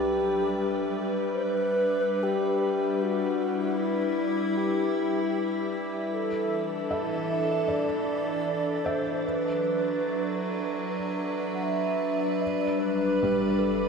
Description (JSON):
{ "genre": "ambient", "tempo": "76 BPM", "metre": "4/4", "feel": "straight", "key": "G major", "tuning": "A4 = 439 Hz", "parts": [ { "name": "wooden-headed alto flute", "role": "melody", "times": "0.0-13.9 s", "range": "E4 to F#5", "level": "-29 LUFS", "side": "equal", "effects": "shimmer reverb, dub echo" }, { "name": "evolving wavetable pad", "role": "sustained chords", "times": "0.0-13.9 s", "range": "E3 to D5", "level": "-27 LUFS", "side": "left 2 dB", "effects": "chorus, built-in reverb, shimmer reverb" }, { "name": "glass harmonica", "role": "texture", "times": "0.0-12.4 s", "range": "E5", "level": "-39 LUFS", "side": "right 4 dB", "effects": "shimmer reverb" }, { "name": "felt-muted upright piano", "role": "arpeggios", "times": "6.9-13.9 s", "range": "G3 to E5", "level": "-34 LUFS", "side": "right 2 dB", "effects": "shimmer reverb, dub echo" }, { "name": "deep rumbling drone", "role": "bass", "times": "13.0-13.9 s", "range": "G1", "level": "-49 LUFS", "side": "right 1 dB", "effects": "built-in reverb" } ], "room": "wet plate reverb, RT60 2.9 s", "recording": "echo-heavy mix", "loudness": "-25 LUFS", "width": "side -5 dB against mid", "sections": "0.0-12.4 A section; 12.4-13.9 B section", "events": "none", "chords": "0.0 G; 6.1 Dsus2; 9.2 Bm; 12.4 G" }